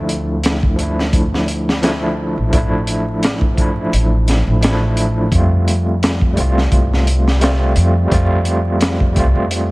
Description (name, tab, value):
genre	trip hop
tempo	86 BPM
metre	4/4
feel	swing 55% on 16ths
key	D minor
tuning	A4 = 440 Hz
part	overdriven tine electric piano	accompaniment	0.0-9.7 s	F3 to F4	-19 LUFS	equal	fast tremolo, tape echo
part	upright bass	bass	0.0-9.7 s	A1 to F2	-17 LUFS	equal	tube saturation
part	crunchy breakbeat drum kit	drums	0.1-9.7 s	hi-hat, kick drum, snare drum	-17 LUFS	equal	vintage 12-bit sampler grit
room	studio reverb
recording	vinyl crackle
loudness	-13 LUFS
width	side -22 dB against mid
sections	0.0-9.7 A section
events	none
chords	0.0 Dmadd9; 5.3 Fadd9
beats	0.44 1.14 1.83 | 2.53 3.23 3.93 4.62 | 5.32 6.02 6.72 7.42 | 8.11 8.81 9.51